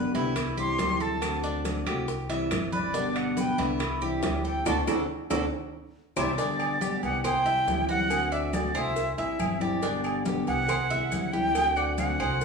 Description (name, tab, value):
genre	latin, Cuban son and guajira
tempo	139 BPM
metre	4/4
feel	straight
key	unclear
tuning	A4 = 440 Hz
part	fingerpicked plugged-in steel-string acoustic guitar	accompaniment	0.0-12.4 s	B2 to G4	-31 LUFS	left 2 dB	none
part	Cuban tres	arpeggios	0.0-12.4 s	D4 to E5	-33 LUFS	right 1 dB	none
part	upright bass	bass	0.0-12.4 s	G1 to D2	-35 LUFS	right 1 dB	none
part	congas	percussion	0.1-12.4 s	none	-36 LUFS	left 1 dB	none
part	maracas	percussion	0.1-12.4 s	none	-46 LUFS	left 5 dB	none
part	timbales and agogo bells	percussion	0.1-12.4 s	none	-34 LUFS	right 4 dB	none
part	bongos and cowbell	percussion	0.4-12.4 s	none	-37 LUFS	right 1 dB	none
part	claves	percussion	0.4-12.4 s	none	-41 LUFS	left 7 dB	none
part	breathy bright jazz flute	melody	0.6-12.4 s	D5 to C6	-29 LUFS	equal	none
room	wet large studio reverb, RT60 1.1 s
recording	band playing live in one room, studio ambience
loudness	-25 LUFS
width	side -5 dB against mid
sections	0.0-6.4 A section; 6.4-12.4 B section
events	flute solo 0.0-6.4; band accent 4.7-6.4; drum fill 5.7-6.4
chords	0.4 C; 1.2 D7; 2.1 C; 2.9 G; 3.8 C; 4.7 D7; 5.5 C; 6.4 G; 7.2 C; 8.1 D7; 9.0 C; 9.8 G; 10.7 C; 11.5 D7